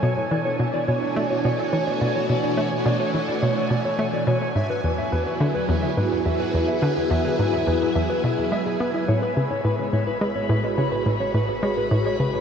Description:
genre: ambient, sequencer-driven space music.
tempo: 106 BPM.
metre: 4/4.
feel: straight.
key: unclear.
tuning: A4 = 439 Hz.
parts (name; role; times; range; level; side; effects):
phased string machine; sustained chords; 0.0-12.4 s; B2 to G#5; -25 LUFS; left 1 dB; ensemble chorus, phaser.
mellow electric guitar; arpeggios; 0.0-12.4 s; E4 to E5; -26 LUFS; moving between left 2 dB and right 4 dB; auto-pan, analog delay.
hollow square pluck; riff; 0.0-12.4 s; E2 to B3; -24 LUFS; equal; chorus, analog delay.
bubbling stepped-filter texture; texture; 0.0-12.4 s; G#5 to B5; -33 LUFS; right 3 dB; chorus, built-in reverb.
warm sub bass; bass; 9.1-12.4 s; A1; -46 LUFS; equal; none.
room: wet shimmer reverb, RT60 7.7 s.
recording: worn, warbling old tape, cassette tape, warbly pitch drift.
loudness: -20 LUFS.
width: side -7 dB against mid.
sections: 0.0-9.1 A section; 9.1-12.4 B section.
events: none.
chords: 0.0 Bmadd9; 4.6 E; 9.1 Aadd9.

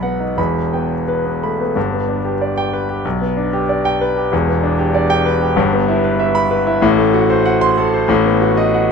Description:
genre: classical, virtuoso piano study.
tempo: 94 BPM.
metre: 2/4.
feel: rubato.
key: G major.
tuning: A4 = 440 Hz.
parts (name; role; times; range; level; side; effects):
clear concert grand piano; solo; 0.0-8.9 s; E1 to C6; -14 LUFS; equal; none.
room: moderate recital hall reverb, RT60 1.6 s.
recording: close, detailed microphones.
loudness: -14 LUFS.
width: side -5 dB against mid.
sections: 0.0-1.8 A section; 1.8-8.9 B section.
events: none.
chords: 0.4 Em; 1.8 G; 3.0 G/B; 4.3 Em7; 5.6 Em/G; 6.8 F#dim/A; 8.1 B7/A.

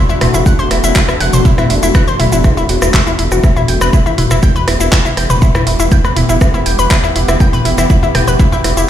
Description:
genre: melodic techno.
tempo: 121 BPM.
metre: 4/4.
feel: straight.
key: E minor.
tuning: A4 = 441 Hz.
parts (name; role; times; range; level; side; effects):
deep dark ambient pad; sustained chords; 0.0-8.9 s; A3 to G4; -20 LUFS; equal; chorus, built-in reverb, sidechain pumping.
analog pluck; arpeggios; 0.1-8.8 s; E4 to G5; -16 LUFS; left 2 dB; chorus, sidechain pumping, ping-pong delay.
swelling detuned saw bass; bass; 0.1-8.9 s; D1 to E1; -16 LUFS; equal; tube saturation, sidechain pumping.
house drum kit; drums; 0.1-8.9 s; handclaps, hi-hat, rim click, shaker, toms; -16 LUFS; equal; sidechain pumping on perc, sidechain pumping on toms, sidechain pumping on hats.
electronic kick drum; drums; 0.5-8.5 s; none; -11 LUFS; equal; none.
room: little or no reverb.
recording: played on a big sound system in a bare room, stone room reverb.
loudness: -9 LUFS.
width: side -11 dB against mid.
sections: 0.0-8.9 A section.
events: none.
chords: 0.0 D; 3.4 Em.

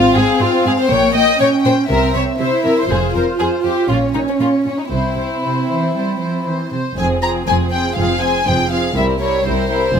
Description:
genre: quick classical-period movement for string orchestra.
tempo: 120 BPM.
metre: 4/4.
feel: straight.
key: F minor.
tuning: A4 = 440 Hz.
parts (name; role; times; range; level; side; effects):
warm symphonic violin section; melody; 0.0-10.0 s; C5 to Bb5; -21 LUFS; left 3 dB; none.
warm symphonic violin section; second line; 0.0-10.0 s; C4 to Eb5; -18 LUFS; left 3 dB; none.
dark symphonic viola section; accompaniment; 0.0-10.0 s; F3 to F4; -19 LUFS; right 2 dB; none.
rich symphonic double bass section; bass; 0.0-10.0 s; F1 to C2; -22 LUFS; right 2 dB; none.
warm chamber cello section; bass; 0.1-10.0 s; C2 to G3; -23 LUFS; right 3 dB; none.
room: light reverb.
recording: close, detailed microphones.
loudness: -14 LUFS.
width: side -7 dB against mid.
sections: 0.0-7.0 A section; 7.0-10.0 A section.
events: none.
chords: 0.0 Fm/Ab; 0.9 Gdim/Bb; 1.9 C; 2.9 F5; 3.9 Bbm; 4.9 C; 7.0 Fm; 9.0 C7.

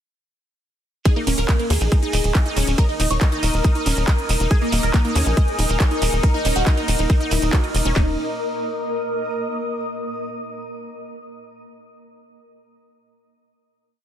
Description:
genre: psychedelic trance.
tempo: 139 BPM.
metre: 4/4.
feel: straight.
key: unclear.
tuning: A4 = 440 Hz.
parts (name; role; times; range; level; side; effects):
supersaw stab; melody; 1.1-8.1 s; Bb3 to Db5; -26 LUFS; equal; phaser, sidechain pumping, dub echo.
wide unison pluck; riff; 1.1-8.2 s; Db4 to Eb5; -28 LUFS; right 1 dB; auto-pan, sidechain pumping, dub echo.
drum and bass drum kit; drums; 1.1-8.1 s; handclaps, kick drum, snare drum; -17 LUFS; equal; overdrive, studio ambience.
techno drum kit; drums; 1.1-7.9 s; handclaps, hi-hat, ride cymbal; -27 LUFS; right 1 dB; overdrive, studio ambience.
shekere; percussion; 1.1-7.9 s; none; -32 LUFS; right 5 dB; none.
granular cloud pad; texture; 1.9-9.6 s; Bb3 to Eb6; -28 LUFS; left 1 dB; built-in reverb, sidechain pumping.
tight sequencer bass; bass; 1.3-8.2 s; Eb1 to Eb2; -21 LUFS; equal; none.
overtone-sweeping drone; sustained chords; 5.2-8.0 s; Eb4 to Bb4; -31 LUFS; left 3 dB; chorus, built-in reverb, phaser, sidechain pumping.
room: light reverb.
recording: dense, heavily limited modern master.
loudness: -18 LUFS.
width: side -10 dB against mid.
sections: 1.1-8.0 drop; 8.0-9.7 final chord.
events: drop 1.1-8.0.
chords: 1.1 Eb5.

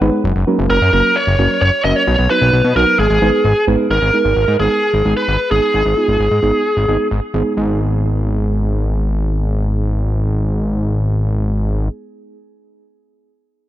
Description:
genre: synth-pop.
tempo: 131 BPM.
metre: 4/4.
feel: straight.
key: G# minor.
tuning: A4 = 444 Hz.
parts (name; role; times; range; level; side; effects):
muted felt-like synth keys; accompaniment; 0.0-11.9 s; F#3 to F#5; -20 LUFS; right 2 dB; chorus, analog delay.
fat analog bass; bass; 0.0-11.9 s; F#1 to B2; -16 LUFS; equal; none.
biting lead guitar; melody; 0.7-7.1 s; G#4 to D#5; -15 LUFS; right 1 dB; overdrive, analog delay.
room: light reverb.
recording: echo-heavy mix.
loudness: -13 LUFS.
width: side -13 dB against mid.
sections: 0.0-3.9 A section; 3.9-7.6 B section; 7.6-11.2 C section.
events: synth keys fill 0.0.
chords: 0.2 F#; 2.1 B; 3.0 G#m.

